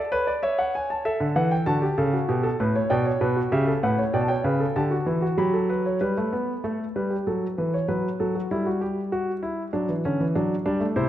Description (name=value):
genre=classical, baroque-style 3-part fugue for grand piano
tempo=97 BPM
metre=4/4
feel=straight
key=D major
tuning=A4 = 440 Hz
part: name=warm grand piano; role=solo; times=0.0-11.1 s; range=A2 to B5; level=-22 LUFS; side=equal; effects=none
room=wet scoring stage reverb, RT60 1.9 s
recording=dark, warm production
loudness=-22 LUFS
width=side -12 dB against mid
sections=0.0-6.0 A section; 6.0-11.1 B section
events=none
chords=0.0 A; 1.0 D; 2.3 G; 3.5 A7; 4.8 D; 6.0 G; 7.3 F#m; 8.5 Em/G; 9.7 D